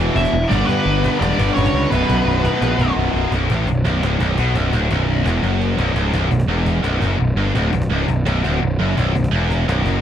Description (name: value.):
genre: heavy metal.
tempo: 170 BPM.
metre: 4/4.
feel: straight.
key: B minor.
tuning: A4 = 439 Hz.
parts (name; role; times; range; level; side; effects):
clear symphonic string section; sustained chords; 0.0-3.3 s; D3 to B4; -32 LUFS; left 1 dB; none.
raw garage guitar; riff; 0.0-3.3 s; B1 to G3; -24 LUFS; left 1 dB; overdrive.
tight distorted guitar; riff; 0.0-10.0 s; B1 to G3; -23 LUFS; left 12 dB; distortion.
tight distorted guitar; riff; 0.0-10.0 s; B1 to G3; -23 LUFS; right 11 dB; distortion.
fuzz picked electric bass; bass; 0.0-10.0 s; B0 to G2; -19 LUFS; equal; overdrive.
high-gain lead guitar; second line; 0.1-2.9 s; B3 to E4; -26 LUFS; right 4 dB; distortion.
nasal lead guitar with a parked wah; melody; 0.2-2.9 s; B4 to E5; -23 LUFS; left 1 dB; overdrive, tape echo.
cajon; drums; 0.2-9.9 s; none; -26 LUFS; equal; none.
room: little or no reverb.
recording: none.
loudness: -16 LUFS.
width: side -10 dB against mid.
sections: 0.0-3.3 A section; 3.3-6.1 B section; 6.1-10.0 C section.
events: break 3.0-3.3; drum fill 5.4-6.1.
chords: 0.0 Em; 0.5 G; 1.9 Bm.